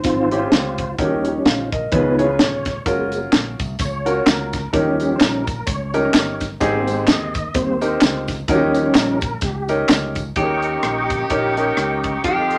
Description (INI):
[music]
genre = uptempo gospel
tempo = 128 BPM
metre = 4/4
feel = swing 57% on 8ths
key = unclear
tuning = A4 = 440 Hz
[part]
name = tonewheel organ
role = sustained chords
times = 0.0-12.6 s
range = Eb3 to Db6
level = -25 LUFS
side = equal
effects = slow rotary speaker, chorus vibrato
[part]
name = modern bright fingered electric bass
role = bass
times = 0.0-12.6 s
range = Eb1 to F2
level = -30 LUFS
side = equal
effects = none
[part]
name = crisp fusion drum kit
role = drums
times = 0.0-12.6 s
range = hi-hat, kick drum, rim click, snare drum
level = -21 LUFS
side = equal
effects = none
[part]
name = warm baby grand piano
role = accompaniment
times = 0.3-12.6 s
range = Ab2 to F5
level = -23 LUFS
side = equal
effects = none
[part]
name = tambourine and handclaps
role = percussion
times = 2.9-10.3 s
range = none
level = -32 LUFS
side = equal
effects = none
[part]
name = clean electric guitar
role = melody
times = 10.4-12.6 s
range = G4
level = -26 LUFS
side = equal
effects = none
[part]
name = warm horn section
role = melody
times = 10.4-12.6 s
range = Bb3 to G4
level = -27 LUFS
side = equal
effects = none
[sound]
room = moderate small room reverb, RT60 0.5 s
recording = none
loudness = -19 LUFS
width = mono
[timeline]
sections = 0.0-10.4 A section; 10.4-12.6 B section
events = tonewheel organ solo 0.0-10.4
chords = 0.0 Dbmaj7; 1.0 Eb7; 1.9 Db7; 2.9 Gbmaj7; 4.7 Eb7; 6.6 Abmaj7; 8.5 Eb7